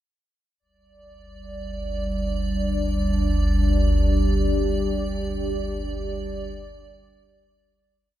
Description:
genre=dark ambient drone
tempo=free time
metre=none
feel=none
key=unclear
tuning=A4 = 439 Hz
part: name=dark analog pad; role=sustained chords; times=1.6-8.0 s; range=G3 to G4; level=-27 LUFS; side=right 1 dB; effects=chorus, shimmer reverb
part: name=deep rumbling drone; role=drone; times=1.7-8.1 s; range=G1 to D2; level=-24 LUFS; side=equal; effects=built-in reverb, phaser, lush chorus
part: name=icy glass pad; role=texture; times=1.0-8.0 s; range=D5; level=-33 LUFS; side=equal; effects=chorus, built-in reverb, shimmer reverb
room=light reverb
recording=none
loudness=-21 LUFS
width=side -12 dB against mid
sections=0.6-8.0 A section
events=fade-in on analog synth pad 0.6-8.0; fade-in on ambient pad 0.6-8.0; fade-out 4.3-8.0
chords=0.6 G5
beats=free time

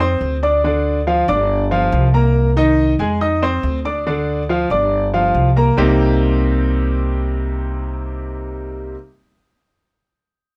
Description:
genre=latin, Cuban son and guajira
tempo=140 BPM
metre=4/4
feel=straight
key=C minor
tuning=A4 = 440 Hz
part: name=clear grand piano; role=arpeggios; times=0.0-8.9 s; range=C3 to Eb6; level=-20 LUFS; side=equal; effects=none
part: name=upright bass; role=bass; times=0.0-8.9 s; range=G1 to F2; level=-21 LUFS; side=equal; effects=none
room=light reverb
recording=none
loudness=-17 LUFS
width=mono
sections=0.0-5.8 A section; 5.8-9.2 B section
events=none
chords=0.0 F5; 0.6 Dmadd11; 1.5 G5; 2.4 Cm7; 3.2 F5; 4.1 Dmadd11; 4.9 G5; 5.8 Cm7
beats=0.21 | 0.64 1.07 1.50 1.92 | 2.35 2.78 3.21 3.63 | 4.06 4.49 4.92 5.35 | 5.78 6.20 6.63 7.06 | 7.49 7.91 8.34 8.77

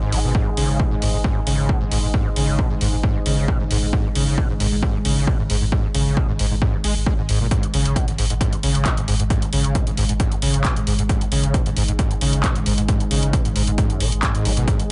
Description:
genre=driving peak-time techno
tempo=134 BPM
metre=4/4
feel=straight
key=G# minor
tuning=A4 = 440 Hz
part: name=overdriven acid bass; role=riff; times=0.0-14.8 s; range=F#2 to G#3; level=-26 LUFS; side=equal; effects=distortion, ensemble chorus, sidechain pumping, digital delay
part: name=saturated sub bass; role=bass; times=0.0-14.9 s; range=G#1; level=-26 LUFS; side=equal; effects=overdrive, sidechain pumping, low-pass filter
part: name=deep dark ambient pad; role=drone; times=0.0-14.9 s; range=G#2 to G#3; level=-31 LUFS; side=equal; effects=chorus, built-in reverb, sidechain pumping
part: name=punchy analog drum machine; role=drums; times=0.1-14.9 s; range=handclaps, hi-hat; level=-29 LUFS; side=equal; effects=overdrive, sidechain pumping on hats
part: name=electronic kick drum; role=drums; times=0.3-14.8 s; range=none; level=-24 LUFS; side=equal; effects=none
room=digital ambience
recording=nothing above 10.5 kHz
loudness=-20 LUFS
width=mono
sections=0.0-14.9 A section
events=none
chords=none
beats=| 0.35 0.80 1.24 1.69 | 2.14 2.59 3.04 3.48 | 3.93 4.38 4.83 5.27 | 5.72 6.17 6.62 7.07 | 7.51 7.96 8.41 8.86 | 9.30 9.75 10.20 10.65 | 11.09 11.54 11.99 12.44 | 12.88 13.33 13.78 14.23 | 14.68

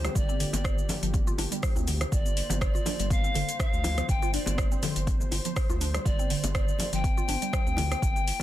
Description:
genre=afro house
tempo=122 BPM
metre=4/4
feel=swing 54% on 16ths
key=G minor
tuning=A4 = 439 Hz
part: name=breathy bright pan flute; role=melody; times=0.0-8.4 s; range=C5 to G5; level=-34 LUFS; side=left 2 dB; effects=tape echo
part: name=warm analog pad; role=sustained chords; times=0.0-8.4 s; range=D3 to C5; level=-41 LUFS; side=right 1 dB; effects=chorus, sidechain pumping
part: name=mallet-like synth pluck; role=arpeggios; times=0.0-8.4 s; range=D3 to F4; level=-36 LUFS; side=equal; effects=chorus, phaser, sidechain pumping, tape echo
part: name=round analog bass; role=bass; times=0.0-8.4 s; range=G1 to D2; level=-31 LUFS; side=equal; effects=sidechain pumping
part: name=afro-pop drum kit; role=drums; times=0.0-8.4 s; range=cabasa, hi-hat, rim click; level=-34 LUFS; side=equal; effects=overdrive
part: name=bongos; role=percussion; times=0.0-8.4 s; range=none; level=-39 LUFS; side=right 1 dB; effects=none
part: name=congas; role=percussion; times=0.0-8.4 s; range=none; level=-39 LUFS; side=left 4 dB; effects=none
part: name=electronic kick drum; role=drums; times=0.2-8.1 s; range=none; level=-28 LUFS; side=equal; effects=overdrive
room=digital ambience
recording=dense, heavily limited modern master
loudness=-25 LUFS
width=side -13 dB against mid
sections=0.0-8.4 A section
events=none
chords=0.0 Gm7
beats=| 0.15 0.65 1.14 1.63 | 2.12 2.61 3.11 3.60 | 4.09 4.58 5.07 5.57 | 6.06 6.55 7.04 7.53 | 8.02

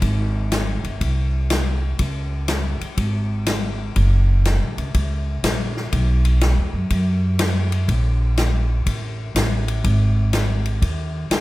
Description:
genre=jazz, big band swing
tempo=122 BPM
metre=4/4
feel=swing 67% on 8ths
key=unclear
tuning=A4 = 440 Hz
part: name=upright bass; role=bass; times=0.0-11.4 s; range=Gb1 to F#2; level=-19 LUFS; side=equal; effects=none
part: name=swinging big-band drum kit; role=drums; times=0.0-11.4 s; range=hi-hat, kick drum, ride cymbal, snare drum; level=-24 LUFS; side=left 2 dB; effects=none
room=little or no reverb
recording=none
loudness=-18 LUFS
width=side -18 dB against mid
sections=0.0-11.4 A section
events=none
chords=none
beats=| 0.02 0.51 1.00 1.50 | 1.99 2.48 2.98 3.47 | 3.96 4.45 4.94 5.43 | 5.92 6.42 6.91 7.39 | 7.88 8.37 8.86 9.35 | 9.84 10.33 10.82 11.31

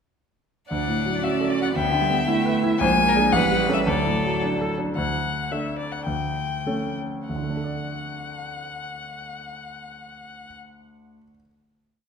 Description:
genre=quick classical-period movement for piano quartet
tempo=93-116 BPM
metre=2/4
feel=straight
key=D major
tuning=A4 = 440 Hz
part: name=rich violin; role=melody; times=0.7-10.6 s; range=D5 to Ab5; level=-27 LUFS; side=left 5 dB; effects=none
part: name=bright violin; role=second line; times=0.7-4.8 s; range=A4 to E5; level=-29 LUFS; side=left 1 dB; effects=none
part: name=rich cello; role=second line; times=0.7-4.8 s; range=F#3 to D4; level=-26 LUFS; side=right 8 dB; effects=none
part: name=clear grand piano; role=accompaniment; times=0.7-11.4 s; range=A1 to D5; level=-26 LUFS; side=equal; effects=none
room=wet recital hall reverb, RT60 1.6 s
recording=none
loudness=-21 LUFS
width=side -6 dB against mid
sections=0.7-5.0 A section; 5.0-7.3 coda; 7.3-9.8 final chord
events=slowing down 4.4-7.3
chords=0.7 D; 1.8 Em7/D; 2.8 Bb7; 3.3 A7; 3.9 D; 6.1 A7/D; 7.3 D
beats=| 0.70 1.24 | 1.76 2.28 | 2.80 3.33 | 3.88 4.43 | 4.97 5.51 | 6.06 6.65 | 7.29 7.92 | 8.55 9.18

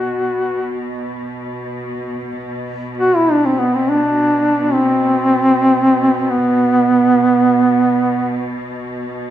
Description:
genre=caucasian folk, Caucasian lament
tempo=free time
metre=none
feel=none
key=B phrygian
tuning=A4 = 440 Hz
part: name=mellow duduk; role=melody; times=0.0-8.6 s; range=B3 to F#4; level=-13 LUFS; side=right 1 dB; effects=none
part: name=clear symphonic string section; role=drone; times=0.0-9.3 s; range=B2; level=-24 LUFS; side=equal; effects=none
room=moderate recital hall reverb, RT60 1.5 s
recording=minimal, uncompressed stereo recording, faint mains hum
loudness=-12 LUFS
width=side -11 dB against mid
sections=0.0-9.3 A section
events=slowing down 5.3-9.3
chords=none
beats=free time

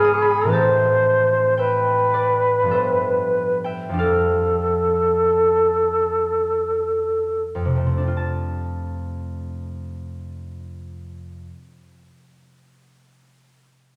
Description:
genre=classical, impressionist duo for flute and harp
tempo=40-58 BPM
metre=3/4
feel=rubato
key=F lydian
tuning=A4 = 440 Hz
part: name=mellow concert flute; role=melody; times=0.0-7.4 s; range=Ab4 to C5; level=-20 LUFS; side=equal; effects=none
part: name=concert harp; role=accompaniment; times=0.0-11.6 s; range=F2 to F6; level=-27 LUFS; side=equal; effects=none
room=wet recital hall reverb, RT60 1.6 s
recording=none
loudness=-20 LUFS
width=mono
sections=0.0-8.2 A section; 8.2-12.1 B section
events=slowing down 0.0-8.2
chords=0.0 Abmadd9; 0.5 Am7; 2.7 G9; 4.0 F69; 8.2 F6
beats=| 0.52 1.58 2.72 | 3.99 5.38 6.76 | 8.18 9.46 10.77

